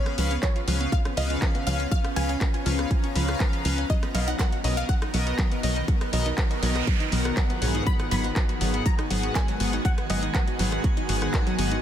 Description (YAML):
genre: progressive house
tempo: 121 BPM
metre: 4/4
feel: straight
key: G# dorian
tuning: A4 = 440 Hz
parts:
  - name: wide unison pluck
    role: melody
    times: 0.0-11.1 s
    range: C#5 to B5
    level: -34 LUFS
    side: moving between left 3 dB and right 3 dB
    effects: auto-pan, sidechain pumping, tape echo
  - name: shimmering ambient pad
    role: sustained chords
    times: 0.0-11.8 s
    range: D#3 to A#5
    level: -33 LUFS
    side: equal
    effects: chorus, built-in reverb, sidechain pumping
  - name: chorused polysynth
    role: stabs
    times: 0.0-11.7 s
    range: G#2 to F#5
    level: -30 LUFS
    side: left 2 dB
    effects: sidechain pumping, tape echo
  - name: analog pluck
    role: arpeggios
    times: 0.1-11.8 s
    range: E#3 to F#5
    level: -33 LUFS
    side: right 1 dB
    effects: chorus, sidechain pumping, tape echo
  - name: house drum kit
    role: drums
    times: 0.1-11.8 s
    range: handclaps, hi-hat, rim click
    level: -33 LUFS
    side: equal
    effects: sidechain pumping on hats, studio ambience
  - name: tight sequencer bass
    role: bass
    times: 0.2-11.8 s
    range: G#1 to C#2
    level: -27 LUFS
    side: equal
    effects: sidechain pumping
  - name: electronic kick drum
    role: drums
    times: 0.4-11.4 s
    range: none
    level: -24 LUFS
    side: equal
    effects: studio ambience
  - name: noise sweep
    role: sound effects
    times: 6.3-7.9 s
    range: none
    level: -35 LUFS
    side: right 5 dB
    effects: none
  - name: drifting glass-harmonics texture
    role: texture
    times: 8.5-11.8 s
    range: G#5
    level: -39 LUFS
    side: right 8 dB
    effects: chorus, built-in reverb, sidechain pumping
room: little or no reverb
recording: dense, heavily limited modern master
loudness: -22 LUFS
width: side -10 dB against mid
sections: 0.0-11.8 A section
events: noise sweep 6.3-7.9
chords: 0.0 C#7; 3.9 Bmaj7; 7.9 G#m7